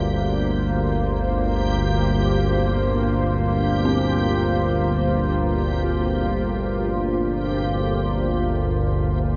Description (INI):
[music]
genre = dark ambient drone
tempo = free time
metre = none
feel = none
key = G minor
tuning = A4 = 440 Hz
[part]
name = deep dark ambient pad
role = sustained chords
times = 0.0-9.4 s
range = G2 to C5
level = -25 LUFS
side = equal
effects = chorus, built-in reverb
[part]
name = dark detuned synth bell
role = arpeggios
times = 0.0-9.4 s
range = C4 to Bb4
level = -35 LUFS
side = equal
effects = none
[part]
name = analog drone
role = drone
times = 0.0-9.4 s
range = G1 to D2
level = -25 LUFS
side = equal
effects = chorus, phaser
[part]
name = backwards swelling texture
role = texture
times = 0.0-9.4 s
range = G4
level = -34 LUFS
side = equal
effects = built-in reverb
[sound]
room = wet cathedral reverb, RT60 6.3 s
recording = in a vast, echoing space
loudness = -22 LUFS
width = mono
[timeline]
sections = 0.0-9.4 A section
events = none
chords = 0.0 Gm7